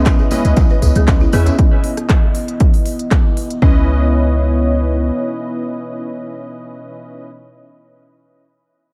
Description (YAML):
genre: afro house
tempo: 118 BPM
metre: 4/4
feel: straight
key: C# minor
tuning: A4 = 439 Hz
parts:
  - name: dark analog pad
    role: sustained chords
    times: 0.0-7.3 s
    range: B3 to D#5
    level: -25 LUFS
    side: equal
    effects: chorus, sidechain pumping
  - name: folk marimba with medium hard mallets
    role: arpeggios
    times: 0.0-3.9 s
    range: G#3 to B4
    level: -26 LUFS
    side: equal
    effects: sidechain pumping, tape echo
  - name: warm analog keys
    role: stabs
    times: 0.0-7.3 s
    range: C#4 to E5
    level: -28 LUFS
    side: equal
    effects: chorus, sidechain pumping, tape echo
  - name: warm 808-style bass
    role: bass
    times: 0.0-5.1 s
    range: B1 to E2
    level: -17 LUFS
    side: equal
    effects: sidechain pumping
  - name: afro-pop drum kit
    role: drums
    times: 0.1-3.6 s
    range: handclaps, hi-hat, rim click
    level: -28 LUFS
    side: equal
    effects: none
  - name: electronic kick drum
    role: drums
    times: 0.1-3.7 s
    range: none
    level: -15 LUFS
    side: equal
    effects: overdrive
  - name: tambourine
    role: percussion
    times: 0.1-1.6 s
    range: none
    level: -38 LUFS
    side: equal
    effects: none
  - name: djembe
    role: percussion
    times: 0.2-1.6 s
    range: none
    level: -27 LUFS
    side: equal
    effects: none
  - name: congas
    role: percussion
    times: 0.3-1.4 s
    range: none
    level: -27 LUFS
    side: equal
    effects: none
room: light reverb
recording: none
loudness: -15 LUFS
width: mono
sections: 0.0-3.6 A section; 3.6-7.7 B section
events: drop 0.0-3.6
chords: 0.0 C#m9